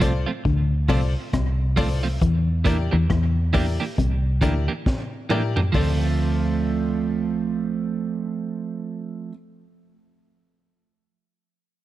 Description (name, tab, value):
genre	roots reggae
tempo	68 BPM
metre	4/4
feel	swing 60% on 16ths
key	D minor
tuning	A4 = 439 Hz
part	clean electric guitar	accompaniment	0.0-9.4 s	E3 to G4	-26 LUFS	right 6 dB	dub echo
part	bright upright piano	stabs	0.0-9.3 s	E4 to D5	-32 LUFS	left 6 dB	none
part	vintage muted fingered electric bass	bass	0.0-9.3 s	C2 to E2	-22 LUFS	equal	none
part	crunchy breakbeat drum kit	drums	0.0-6.0 s	hi-hat, kick drum, rim click, snare drum, toms	-25 LUFS	equal	none
part	semi-hollow electric guitar	riff	0.5-4.6 s	C3 to E3	-28 LUFS	left 6 dB	spring reverb
room	light reverb, small room ambience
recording	none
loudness	-20 LUFS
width	side -14 dB against mid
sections	0.0-5.7 A section; 5.7-9.3 B section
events	drum fill 4.9-5.7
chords	0.0 Dm7; 2.2 Em7b5; 5.7 Dm7